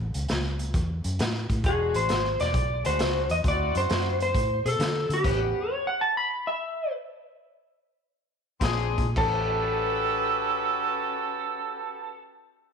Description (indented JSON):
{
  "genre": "electric blues shuffle",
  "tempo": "107-133 BPM",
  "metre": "4/4",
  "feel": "swing 68% on 8ths",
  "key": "A mixolydian",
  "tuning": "A4 = 440 Hz",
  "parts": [
    { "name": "vintage muted fingered electric bass", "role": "bass", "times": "0.0-5.5, 8.6-12.2 s", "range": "E1 to D3", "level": "-29 LUFS", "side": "equal", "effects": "none" },
    { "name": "raw garage drum kit", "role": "drums", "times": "0.1-5.4, 8.6-9.3 s", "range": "crash cymbal, hi-hat, kick drum, snare drum", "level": "-29 LUFS", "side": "equal", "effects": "none" },
    { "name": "clear horn section", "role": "stabs", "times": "1.6-5.6, 8.6-12.2 s", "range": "G#3 to F#5", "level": "-32 LUFS", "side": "left 12 dB", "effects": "none" },
    { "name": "electric slide guitar", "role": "melody", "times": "1.7-12.2 s", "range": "G4 to B5", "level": "-27 LUFS", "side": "equal", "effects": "none" },
    { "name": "mellow harmonica", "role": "second line", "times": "9.2-12.2 s", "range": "A4", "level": "-28 LUFS", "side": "right 11 dB", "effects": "overdrive" }
  ],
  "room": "moderate echo chamber reverb, RT60 1.4 s",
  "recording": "1960s-style stereo with parts hard left and right",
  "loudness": "-24 LUFS",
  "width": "side -6 dB against mid",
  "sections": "0.0-9.2 A section; 9.2-12.7 B section",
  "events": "slowing down 5.2-9.2; stop 5.2-8.6",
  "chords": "0.0 A; 1.6 E9; 3.4 D9; 5.2 A13; 8.6 Bb9; 9.2 A13",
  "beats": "0.29 0.74 1.19 | 1.64 2.09 2.54 2.99 | 3.44 3.89 4.34 4.79 | 5.25 5.70 6.15 6.62 | 7.09 7.58 8.09 8.61 | 9.16 9.72 10.28 10.84 | 11.40 11.96"
}